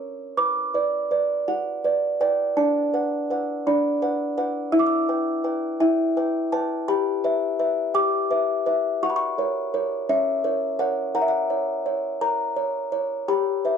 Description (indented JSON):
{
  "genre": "classical, lullaby for music box",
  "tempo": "56 BPM (dotted quarters)",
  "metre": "6/8",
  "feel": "rubato",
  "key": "B minor",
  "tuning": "A4 = 439 Hz",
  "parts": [
    { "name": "music box", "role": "solo", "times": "0.0-13.8 s", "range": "C#4 to E6", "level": "-21 LUFS", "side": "equal", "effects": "none" }
  ],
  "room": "light reverb",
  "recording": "dry, close 1970s-style studio recording",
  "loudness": "-21 LUFS",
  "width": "side -7 dB against mid",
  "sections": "0.4-13.8 A section",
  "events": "none",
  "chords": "0.4 Bm; 2.6 Bm/D; 4.7 Em; 6.9 Em/G; 9.0 F#; 11.2 F#/A#",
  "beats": "| 0.37 1.48 | 2.57 3.66 | 4.73 5.81 | 6.89 7.96 | 9.03 10.10 | 11.15 12.21 | 13.28"
}